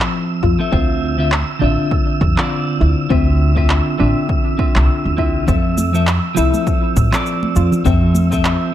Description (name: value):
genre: sunset chillout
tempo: 101 BPM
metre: 4/4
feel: swing 57% on 16ths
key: D minor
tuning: A4 = 438 Hz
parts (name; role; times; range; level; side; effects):
- clean electric guitar; accompaniment; 0.0-8.7 s; D3 to E5; -20 LUFS; equal; auto-pan, low-pass filter, digital delay
- electronic handclaps and shaker; drums; 0.0-8.6 s; none; -22 LUFS; right 1 dB; overdrive
- wind-like tuned noise texture; texture; 0.0-8.7 s; E6; -26 LUFS; right 5 dB; built-in reverb
- soft round pluck; arpeggios; 0.4-8.0 s; C4 to F4; -24 LUFS; left 4 dB; chorus, digital delay
- upright bass; bass; 0.4-8.5 s; A1 to A2; -16 LUFS; equal; none
- electronic kick drum; drums; 0.4-8.4 s; none; -19 LUFS; equal; overdrive
- congas; percussion; 5.8-8.3 s; none; -25 LUFS; right 1 dB; none
room: light reverb, digital ambience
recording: dark, warm production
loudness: -13 LUFS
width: side -12 dB against mid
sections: 0.0-8.7 A section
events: none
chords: 0.0 Fmaj7; 0.7 Dm9; 5.5 Fmaj7